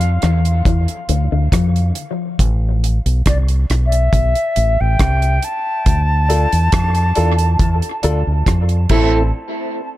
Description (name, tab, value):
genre	dub reggae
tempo	69 BPM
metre	4/4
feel	straight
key	unclear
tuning	A4 = 440 Hz
part	mellow concert flute	melody	0.0-9.3 s	D5 to A5	-21 LUFS	left 1 dB	tape echo
part	electric guitar with an envelope filter	riff	0.0-1.8 s	D3 to F3	-24 LUFS	left 7 dB	tape echo
part	deep dub fingered electric bass	bass	0.0-9.3 s	A1 to F2	-15 LUFS	equal	none
part	deep reggae drum kit	drums	0.0-9.1 s	crash cymbal, hi-hat, kick drum, rim click	-18 LUFS	equal	none
part	warm upright piano	stabs	6.3-9.2 s	C4 to A4	-24 LUFS	left 2 dB	tape echo
part	electric guitar at the edge of break-up	accompaniment	8.9-9.2 s	C4 to A4	-24 LUFS	right 4 dB	tape echo
part	mellow tonewheel organ	accompaniment	8.9-9.2 s	A3 to E4	-25 LUFS	equal	chorus vibrato, slow rotary speaker, tape echo
room	light reverb, small room reverb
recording	echo-heavy mix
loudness	-14 LUFS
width	side -15 dB against mid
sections	0.0-9.3 A section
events	break 0.0-9.3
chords	0.0 Dm; 2.4 Am; 5.9 Dm; 8.9 Am; 9.3 N.C.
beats	0.66 1.52 | 2.39 3.26 4.13 5.00 | 5.86 6.73 7.60 8.47